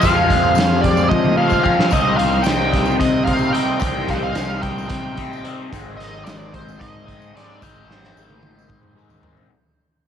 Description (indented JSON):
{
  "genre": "psychedelic rock",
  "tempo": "222 BPM (eighths)",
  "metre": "7/8",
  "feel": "straight",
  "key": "unclear",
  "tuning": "A4 = 440 Hz",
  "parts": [
    { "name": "bluesy overdriven lead guitar", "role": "melody", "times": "0.0-8.9 s", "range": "C5 to G5", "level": "-21 LUFS", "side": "right 1 dB", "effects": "wah, distortion, tape echo" },
    { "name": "combo organ", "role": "sustained chords", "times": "0.0-9.5 s", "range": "G3 to B5", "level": "-28 LUFS", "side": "right 12 dB", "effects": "none" },
    { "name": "raw garage guitar", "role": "riff", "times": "0.0-9.5 s", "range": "F2 to Eb4", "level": "-22 LUFS", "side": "left 10 dB", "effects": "overdrive, phaser" },
    { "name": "fuzz picked electric bass", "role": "bass", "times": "0.0-9.5 s", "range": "Ab1 to F3", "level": "-23 LUFS", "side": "right 2 dB", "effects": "overdrive" },
    { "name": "raw garage drum kit", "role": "drums", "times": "0.0-9.5 s", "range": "hi-hat, kick drum, snare drum, toms", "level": "-22 LUFS", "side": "right 2 dB", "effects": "none" },
    { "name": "tambourine", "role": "percussion", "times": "0.0-9.2 s", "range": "none", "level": "-40 LUFS", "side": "left 15 dB", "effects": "none" }
  ],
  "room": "light reverb, studio reverb",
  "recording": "1960s-style stereo with parts hard left and right",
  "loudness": "-15 LUFS",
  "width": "side -8 dB against mid",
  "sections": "0.0-9.5 A section",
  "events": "fade-out 0.0-9.5; drum fill 1.1-1.9, 7.9-9.5",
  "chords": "0.0 Fm; 1.9 Cm; 5.7 Ab"
}